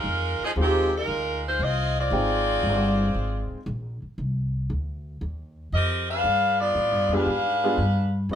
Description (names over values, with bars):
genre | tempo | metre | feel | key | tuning
jazz, big band swing | 116 BPM | 4/4 | swing 69% on 8ths | C minor | A4 = 440 Hz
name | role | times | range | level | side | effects
edgy saxophone section | melody | 0.0-8.4 s | Eb3 to F5 | -24 LUFS | equal | none
upright bass | bass | 0.0-8.4 s | G1 to A2 | -27 LUFS | equal | none
clear concert grand piano | accompaniment | 0.6-3.6, 7.1-8.4 s | G3 to G5 | -27 LUFS | equal | none
room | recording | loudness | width
wet studio reverb, RT60 0.8 s | band playing live in one room | -22 LUFS | side -9 dB against mid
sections
0.0-8.4 A section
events
none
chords
0.0 Cm; 6.2 G7b9